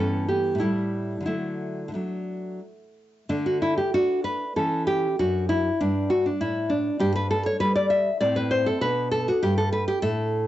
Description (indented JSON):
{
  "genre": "classical, baroque-style dance for nylon-string guitar",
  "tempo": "87-101 BPM",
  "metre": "3/4",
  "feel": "rubato",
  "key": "D major",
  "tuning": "A4 = 438 Hz",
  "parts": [
    { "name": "nylon-string guitar", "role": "solo", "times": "0.0-10.5 s", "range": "F#2 to E5", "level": "-22 LUFS", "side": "equal", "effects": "cassette tape" }
  ],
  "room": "moderate studio reverb, RT60 0.6 s",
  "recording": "home recording on cassette, nothing above 7.8 kHz",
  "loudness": "-22 LUFS",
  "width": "side -13 dB against mid",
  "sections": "0.0-3.3 A section; 3.3-10.5 B section",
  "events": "none",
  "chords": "0.0 Em/G; 0.6 A5; 1.3 D; 3.3 D5; 4.6 A7/E; 5.2 D/F#; 7.0 G5; 8.2 Amadd9; 8.8 G"
}